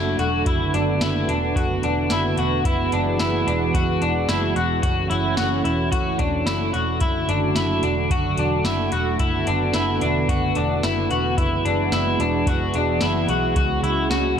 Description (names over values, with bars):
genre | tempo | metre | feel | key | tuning
dream pop | 110 BPM | 4/4 | straight | unclear | A4 = 440 Hz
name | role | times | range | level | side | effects
lush unison pad | sustained chords | 0.0-14.4 s | C#3 to F#4 | -24 LUFS | right 3 dB | chorus
electric guitar at the edge of break-up | arpeggios | 0.0-14.4 s | D4 to F#4 | -23 LUFS | left 2 dB | lush chorus, digital delay
vintage muted picked electric bass | bass | 0.0-14.4 s | E1 to C#2 | -26 LUFS | equal | none
soft vintage rhythm box | drums | 0.2-14.2 s | hi-hat, kick drum, snare drum | -26 LUFS | equal | overdrive
room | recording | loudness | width
moderate huge ambient reverb, RT60 6.3 s | none | -19 LUFS | side -8 dB against mid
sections
0.0-14.4 A section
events
none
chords
0.5 Bm7; 2.7 Eadd9; 4.8 F#m7; 7.0 D; 9.2 Bm7; 11.4 Eadd9; 13.6 C#sus4